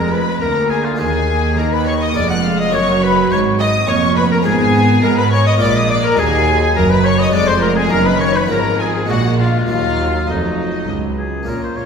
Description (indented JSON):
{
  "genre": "classical, baroque-style concerto movement with solo episodes",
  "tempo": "104 BPM",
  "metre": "3/4",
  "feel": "straight",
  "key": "Eb minor",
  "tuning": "A4 = 440 Hz",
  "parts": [
    { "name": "rich studio violin section", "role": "melody", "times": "0.0-11.9 s", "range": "Eb5 to Gb6", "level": "-23 LUFS", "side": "left 4 dB", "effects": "none" },
    { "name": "warm oboe", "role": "melody", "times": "0.0-11.9 s", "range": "Eb4 to Gb5", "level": "-20 LUFS", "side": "left 3 dB", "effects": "none" },
    { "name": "rich chamber violin section", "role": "second line", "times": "0.0-11.9 s", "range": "Eb4 to Gb5", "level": "-21 LUFS", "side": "left 2 dB", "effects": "none" },
    { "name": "harpsichord", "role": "accompaniment", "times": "0.0-11.9 s", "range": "Db2 to Bb4", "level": "-24 LUFS", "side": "equal", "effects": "none" },
    { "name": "rich chamber viola section", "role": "accompaniment", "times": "0.0-11.9 s", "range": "Eb3 to Db4", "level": "-22 LUFS", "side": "right 2 dB", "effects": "none" },
    { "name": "clear chamber double bass section", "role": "bass", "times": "0.0-11.9 s", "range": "F1 to Ab2", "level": "-21 LUFS", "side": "right 2 dB", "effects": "none" },
    { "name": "rich chamber cello section", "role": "bass", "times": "0.0-11.8 s", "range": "Db2 to Ab3", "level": "-20 LUFS", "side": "right 3 dB", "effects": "none" }
  ],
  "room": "wet scoring stage reverb, RT60 1.5 s",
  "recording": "heard from further back in the room",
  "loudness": "-13 LUFS",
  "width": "side -6 dB against mid",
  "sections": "0.0-11.5 A section",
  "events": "none",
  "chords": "0.0 Bb7; 1.0 Ebm; 2.2 Bb5/F; 2.7 Gbmaj13; 4.5 Fdim/Ab; 5.6 Bb5; 6.2 Ebm; 7.3 Ddim/F; 7.9 Ebm/Gb; 8.5 Fdim/Ab; 9.1 Bb7; 9.7 Ebm",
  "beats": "0.42 | 0.99 1.58 2.16 | 2.73 3.31 3.88 | 4.46 5.03 5.61 | 6.19 6.76 7.34 | 7.92 8.50 9.09 | 9.69 10.29 10.88 | 11.47"
}